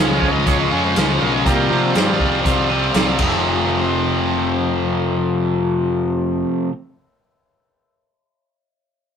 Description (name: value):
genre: classic rock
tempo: 121 BPM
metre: 4/4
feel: straight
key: unclear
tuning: A4 = 445 Hz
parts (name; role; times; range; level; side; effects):
- bright tonewheel organ; sustained chords; 0.0-2.4 s; F3 to Eb5; -23 LUFS; equal; slow rotary speaker, overdrive
- cranked stack guitar; riff; 0.0-6.7 s; C3 to F4; -20 LUFS; left 6 dB; overdrive
- distorted electric guitar; riff; 0.0-6.7 s; F2 to F4; -20 LUFS; right 6 dB; overdrive
- growling picked electric bass; bass; 0.0-6.4 s; F1 to C3; -24 LUFS; equal; overdrive
- vintage drum kit; drums; 0.2-3.3 s; crash cymbal, hi-hat, kick drum, snare drum; -21 LUFS; equal; none
room: light reverb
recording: rough rehearsal-room recording, tube saturation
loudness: -16 LUFS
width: side -7 dB against mid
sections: 0.0-3.4 A section; 3.4-7.4 B section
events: tonewheel organ solo 0.0-3.4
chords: 0.0 Db; 1.5 Csus4; 3.2 F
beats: 0.46 0.96 | 1.46 1.95 2.45 2.95 | 3.44 3.94 4.44 4.93 | 5.43 5.93 6.43